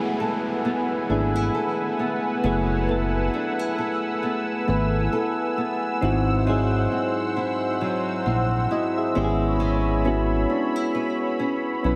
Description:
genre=R&B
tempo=67 BPM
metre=4/4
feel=swing 58% on 16ths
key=F# minor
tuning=A4 = 440 Hz
part: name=soft electric-piano-like synth keys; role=accompaniment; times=0.0-12.0 s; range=G#3 to E5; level=-28 LUFS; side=equal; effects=chorus
part: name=lush unison pad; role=sustained chords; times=0.0-12.0 s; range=B4 to E6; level=-30 LUFS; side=equal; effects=chorus, phaser
part: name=nylon-string guitar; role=arpeggios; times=0.0-12.0 s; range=G#2 to B4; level=-32 LUFS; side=equal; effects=lush chorus, diffuse ambient delay
part: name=downlifter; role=sound effects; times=0.0-6.0 s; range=none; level=-42 LUFS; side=equal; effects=none
part: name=smooth synth bass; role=bass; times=1.1-12.0 s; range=F#1 to B1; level=-26 LUFS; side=equal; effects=none
room=wet cathedral reverb, RT60 5.6 s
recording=dreamy mix soaked in reverb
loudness=-24 LUFS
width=mono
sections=0.0-12.0 A section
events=none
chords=0.0 F#m11; 6.0 G#7b13; 9.2 C#m7/G#

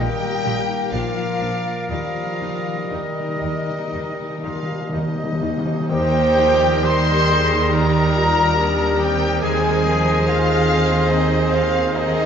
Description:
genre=classical, slow romantic movement for symphony orchestra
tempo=59-74 BPM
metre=4/4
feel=rubato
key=Eb major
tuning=A4 = 444 Hz
part: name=warm studio violin section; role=melody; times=0.0-12.3 s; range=Eb5 to C6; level=-28 LUFS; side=left 3 dB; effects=none
part: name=bright clarinet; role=second line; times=0.0-12.3 s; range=Bb4 to C5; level=-32 LUFS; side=left 1 dB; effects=none
part: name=clear oboe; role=second line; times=0.0-12.3 s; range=D5 to Eb5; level=-30 LUFS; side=right 1 dB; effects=none
part: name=mellow small flute group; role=second line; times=0.0-12.3 s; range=Eb5 to C6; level=-28 LUFS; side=left 5 dB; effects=none
part: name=warm studio violin section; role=second line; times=0.0-12.3 s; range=C4 to Bb4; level=-29 LUFS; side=left 2 dB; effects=none
part: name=rich studio viola section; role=accompaniment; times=0.0-12.3 s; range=D3 to Eb4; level=-28 LUFS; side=right 2 dB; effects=none
part: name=warm bassoon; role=accompaniment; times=0.0-12.3 s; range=G3 to Bb3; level=-28 LUFS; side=right 1 dB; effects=none
part: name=mellow French horn section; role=sustained chords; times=0.0-12.3 s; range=Eb3 to C5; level=-24 LUFS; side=right 1 dB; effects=none
part: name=concert harp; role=arpeggios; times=0.0-12.3 s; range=Bb2 to C6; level=-29 LUFS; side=left 7 dB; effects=none
part: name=rich studio double bass section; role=bass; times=0.0-12.3 s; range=Bb1 to Eb2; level=-26 LUFS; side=right 3 dB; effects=none
part: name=warm studio cello section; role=bass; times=0.0-12.3 s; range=Eb2 to Eb3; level=-25 LUFS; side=right 4 dB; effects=none
part: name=timpani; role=percussion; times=1.9-7.3 s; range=Eb3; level=-27 LUFS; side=equal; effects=none
part: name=warm trumpet section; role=stabs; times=4.4-12.3 s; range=Eb4 to C5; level=-24 LUFS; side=equal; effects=none
room=wet scoring stage reverb, RT60 1.5 s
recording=nothing above 7.5 kHz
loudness=-17 LUFS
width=side -7 dB against mid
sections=0.0-5.9 A section; 5.9-12.3 B section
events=timpani fill 1.9-5.9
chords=0.0 Eb/Bb; 0.9 Bb; 1.9 Eb; 9.4 Ab/Eb

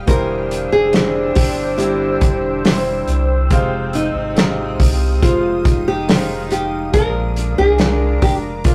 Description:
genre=pop ballad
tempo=70 BPM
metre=4/4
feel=straight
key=unclear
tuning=A4 = 439 Hz
part: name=rich studio cello section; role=second line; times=0.0-8.7 s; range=C3 to Eb4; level=-29 LUFS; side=equal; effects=none
part: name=clear concert grand piano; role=accompaniment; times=0.0-8.7 s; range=Bb2 to C5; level=-25 LUFS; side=equal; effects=none
part: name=shimmering ambient pad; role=sustained chords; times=0.0-8.7 s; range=Ab3 to E6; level=-31 LUFS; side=equal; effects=chorus, built-in reverb
part: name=warm sub bass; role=bass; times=0.0-8.7 s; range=E1 to C2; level=-25 LUFS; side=equal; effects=none
part: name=nylon-string guitar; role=melody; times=0.1-8.7 s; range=Eb4 to Bb4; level=-22 LUFS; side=equal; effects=none
part: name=natural country drum kit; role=drums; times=0.1-8.7 s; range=hi-hat, kick drum, snare drum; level=-18 LUFS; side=equal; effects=none
room=moderate studio reverb, RT60 0.6 s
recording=rough rehearsal-room recording, tube saturation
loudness=-16 LUFS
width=mono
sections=0.0-8.7 A section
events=none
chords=0.1 C/E; 3.5 Fm7; 6.9 Bb7

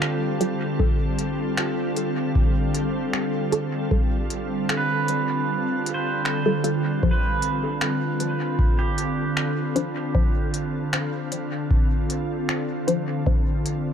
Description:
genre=ambient dub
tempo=77 BPM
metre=4/4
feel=swing 53% on 16ths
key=D dorian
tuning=A4 = 440 Hz
part: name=soft additive organ-like pad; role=sustained chords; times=0.0-13.9 s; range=D3 to A4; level=-25 LUFS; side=equal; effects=ensemble chorus, built-in reverb
part: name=pedal steel guitar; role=arpeggios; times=0.0-12.4 s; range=G4 to C5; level=-30 LUFS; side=right 5 dB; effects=dub echo
part: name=organic electronic drum kit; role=drums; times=0.0-13.8 s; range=finger snaps, hi-hat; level=-29 LUFS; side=left 1 dB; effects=dub echo
part: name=filtered dub chord stab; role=stabs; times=0.4-13.5 s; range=F3 to C5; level=-28 LUFS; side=left 2 dB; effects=phaser, analog chorus, dub echo
part: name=electronic kick drum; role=drums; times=0.8-13.4 s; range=none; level=-22 LUFS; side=equal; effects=none
room=light reverb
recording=dark, warm production, faint mains hum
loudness=-21 LUFS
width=side -8 dB against mid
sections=0.0-13.9 A section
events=kick drops out 5.5-7.0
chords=0.0 Dm7

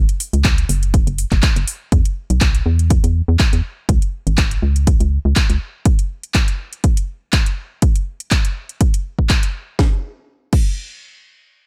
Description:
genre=piano house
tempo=122 BPM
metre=4/4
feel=swing 54% on 16ths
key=unclear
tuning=A4 = 440 Hz
part: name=organ-like FM bass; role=bass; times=0.0-5.6 s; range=F#1 to E2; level=-19 LUFS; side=equal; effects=tube saturation, sidechain pumping
part: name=house drum kit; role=drums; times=0.1-10.7 s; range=crash cymbal, handclaps, hi-hat, snare drum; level=-25 LUFS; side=equal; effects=none
part: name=electronic kick drum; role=drums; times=0.4-10.7 s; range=none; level=-18 LUFS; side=equal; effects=none
room=digital ambience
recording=none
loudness=-17 LUFS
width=mono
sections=0.0-9.8 A section; 9.8-11.7 B section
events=none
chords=none

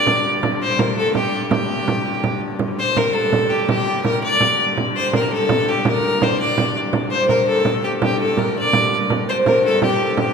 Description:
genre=medieval dance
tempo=111 BPM (dotted quarters)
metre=6/8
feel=straight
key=G minor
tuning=A4 = 440 Hz
part: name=bright fiddle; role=melody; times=0.0-10.3 s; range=G4 to D5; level=-19 LUFS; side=left 2 dB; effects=none
part: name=clear hurdy-gurdy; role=drone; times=0.0-10.3 s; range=G2 to D3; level=-28 LUFS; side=left 2 dB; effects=none
part: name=frame drum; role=percussion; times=0.1-10.3 s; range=none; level=-21 LUFS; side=right 3 dB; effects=none
part: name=concert harp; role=second line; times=7.1-10.3 s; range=G4 to D5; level=-21 LUFS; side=equal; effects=none
room=wet concert hall reverb, RT60 2.5 s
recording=minimal, uncompressed stereo recording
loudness=-16 LUFS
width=side -6 dB against mid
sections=0.0-2.6 A section; 2.6-10.3 A section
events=none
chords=none

